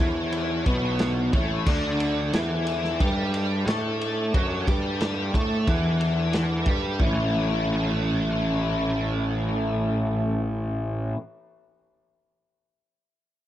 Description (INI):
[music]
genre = psychedelic rock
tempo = 90 BPM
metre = 4/4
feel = straight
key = A mixolydian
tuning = A4 = 440 Hz
[part]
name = mellow tonewheel organ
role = sustained chords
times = 0.0-10.4 s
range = C#4 to D6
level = -34 LUFS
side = right 4 dB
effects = fast rotary speaker
[part]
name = biting overdriven guitar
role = riff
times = 0.0-11.2 s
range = A2 to A4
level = -25 LUFS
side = left 1 dB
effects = rotary speaker
[part]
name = fuzz picked electric bass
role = bass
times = 0.0-11.1 s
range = A1 to A2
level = -29 LUFS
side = equal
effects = overdrive
[part]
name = crunchy breakbeat drum kit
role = drums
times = 0.0-7.2 s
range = crash cymbal, kick drum, ride cymbal, snare drum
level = -27 LUFS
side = equal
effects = none
[sound]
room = light reverb, small room ambience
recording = none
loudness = -22 LUFS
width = side -12 dB against mid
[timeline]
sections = 0.0-7.0 A section; 7.0-9.7 B section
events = none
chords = 0.0 A; 1.7 D5; 7.0 A